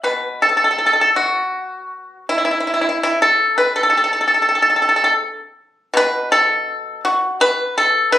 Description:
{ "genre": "chinese traditional, Chinese solo plucked strings", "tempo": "82 BPM", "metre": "4/4", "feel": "rubato", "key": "unclear", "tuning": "A4 = 441 Hz", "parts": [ { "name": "pipa", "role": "solo", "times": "0.0-8.2 s", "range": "B2 to B4", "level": "-14 LUFS", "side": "equal", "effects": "none" } ], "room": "light reverb", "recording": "recorded on a phone in the room, club reverb", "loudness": "-14 LUFS", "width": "side -12 dB against mid", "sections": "0.1-8.2 A section", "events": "none", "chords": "none" }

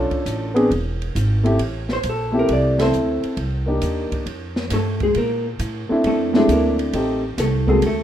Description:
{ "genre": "jazz, small-group swing and bop", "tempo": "135 BPM", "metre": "4/4", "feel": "swing 68% on 8ths", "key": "unclear", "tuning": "A4 = 441 Hz", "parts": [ { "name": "warm grand piano", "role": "accompaniment", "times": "0.0-7.8 s", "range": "A3 to A4", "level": "-19 LUFS", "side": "equal", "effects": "plate reverb" }, { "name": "upright bass", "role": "bass", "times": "0.0-8.0 s", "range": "E1 to Bb2", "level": "-23 LUFS", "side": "right 1 dB", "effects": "none" }, { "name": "open jazz drum kit", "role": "drums", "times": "0.1-8.0 s", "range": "hi-hat, kick drum, ride cymbal, snare drum", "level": "-29 LUFS", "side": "right 1 dB", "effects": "none" }, { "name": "vintage hollow-body jazz guitar", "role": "melody", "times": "1.9-8.0 s", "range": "Ab3 to D5", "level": "-21 LUFS", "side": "equal", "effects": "plate reverb" } ], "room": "wet studio reverb, RT60 0.5 s", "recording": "rough home demo mix", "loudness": "-18 LUFS", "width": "side -10 dB against mid", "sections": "0.0-8.0 A section", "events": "band accent 2.7", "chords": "0.0 Bm7b5; 0.7 E; 1.6 Am7; 3.4 Cm7; 4.3 Fadd9; 5.2 Bbmaj9#11; 6.9 Am7b5" }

